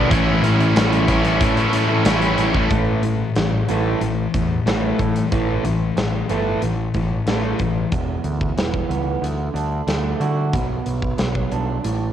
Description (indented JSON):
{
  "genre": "quiet-loud alternative rock",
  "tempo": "92 BPM",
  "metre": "4/4",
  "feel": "straight",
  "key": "unclear",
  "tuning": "A4 = 440 Hz",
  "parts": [
    { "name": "biting overdriven guitar", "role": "riff", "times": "0.0-2.7 s", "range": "A2 to E4", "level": "-22 LUFS", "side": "right 8 dB", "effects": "cassette tape" },
    { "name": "distorted electric guitar", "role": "riff", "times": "0.0-2.7 s", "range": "A2 to E4", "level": "-20 LUFS", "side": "left 1 dB", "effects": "overdrive, cassette tape" },
    { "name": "thick fuzz guitar", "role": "riff", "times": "0.0-7.9 s", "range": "A2 to E4", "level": "-23 LUFS", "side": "left 7 dB", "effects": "distortion, cassette tape" },
    { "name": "growling picked electric bass", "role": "bass", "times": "0.0-12.1 s", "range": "E1 to D3", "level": "-23 LUFS", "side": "equal", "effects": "overdrive" },
    { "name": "huge arena drum kit", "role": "drums", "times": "0.1-12.0 s", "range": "hi-hat, kick drum, snare drum", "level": "-24 LUFS", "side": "equal", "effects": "cassette tape" },
    { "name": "electric guitar through a small old amp", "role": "arpeggios", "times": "2.7-12.1 s", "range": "E2 to F#4", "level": "-25 LUFS", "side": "right 7 dB", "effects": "cassette tape, analog delay" }
  ],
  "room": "light reverb, small room ambience",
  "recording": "home recording on cassette",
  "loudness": "-17 LUFS",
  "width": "side -10 dB against mid",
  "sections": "0.0-2.7 A section; 2.7-7.9 B section; 7.9-12.1 C section",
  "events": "none",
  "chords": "0.1 A; 2.7 A5; 7.9 E5; 9.2 D; 10.5 Bm"
}